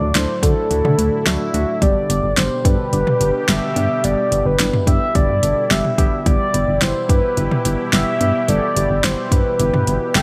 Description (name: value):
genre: synth-pop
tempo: 108 BPM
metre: 4/4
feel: straight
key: unclear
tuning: A4 = 440 Hz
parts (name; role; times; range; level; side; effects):
- mellow horn-like synth lead; melody; 0.0-10.2 s; A4 to G5; -22 LUFS; equal; chorus
- muted felt-like synth keys; accompaniment; 0.0-10.2 s; A3 to A4; -28 LUFS; equal; chorus
- sweeping resonant pad; sustained chords; 0.0-10.2 s; A2 to G4; -29 LUFS; equal; chorus
- soft round pluck; arpeggios; 0.0-10.2 s; F#3 to G4; -32 LUFS; equal; none
- solid FM bass; bass; 0.0-10.2 s; G1 to D3; -23 LUFS; equal; none
- deep house drum kit; drums; 0.2-10.2 s; hi-hat, kick drum, snare drum, toms; -21 LUFS; equal; none
room: moderate plate reverb, RT60 2.4 s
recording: bright 1980s-style digital production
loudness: -17 LUFS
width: mono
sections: 0.0-10.2 A section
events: none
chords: 0.0 D; 1.8 G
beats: 0.15 0.71 1.26 | 1.82 2.37 2.93 3.48 | 4.04 4.60 5.15 5.71 | 6.26 6.82 7.37 7.93 | 8.48 9.04 9.60 10.15